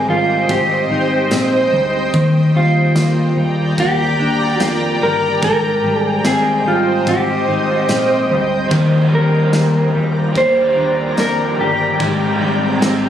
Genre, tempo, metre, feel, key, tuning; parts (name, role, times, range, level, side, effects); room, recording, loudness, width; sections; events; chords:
dream pop; 73 BPM; 4/4; straight; Eb major; A4 = 440 Hz
mellow electric guitar; melody; 0.0-13.1 s; F4 to C5; -18 LUFS; right 1 dB; spring reverb, ping-pong delay
granular cloud pad; sustained chords; 0.0-13.1 s; C5 to Bb5; -20 LUFS; right 1 dB; built-in reverb
mellow electric guitar; arpeggios; 0.0-13.1 s; Ab2 to Eb4; -18 LUFS; left 2 dB; lush chorus
vintage muted fingered electric bass; bass; 0.0-13.1 s; G1 to F2; -23 LUFS; equal
huge arena drum kit; drums; 0.5-13.0 s; kick drum, ride cymbal, snare drum, tambourine; -26 LUFS; right 1 dB
crunchy overdriven guitar; accompaniment; 8.7-13.1 s; Eb3 to G4; -22 LUFS; right 3 dB; tremolo, lush chorus
moderate plate reverb, RT60 2.6 s; recorded on a phone in the room, studio reverb, compression; -13 LUFS; side -10 dB against mid
0.0-13.1 A section
0.0 Abmaj7; 2.1 Ebmaj7; 5.4 Abmaj7; 8.7 Ebmaj7; 12.0 Abmaj7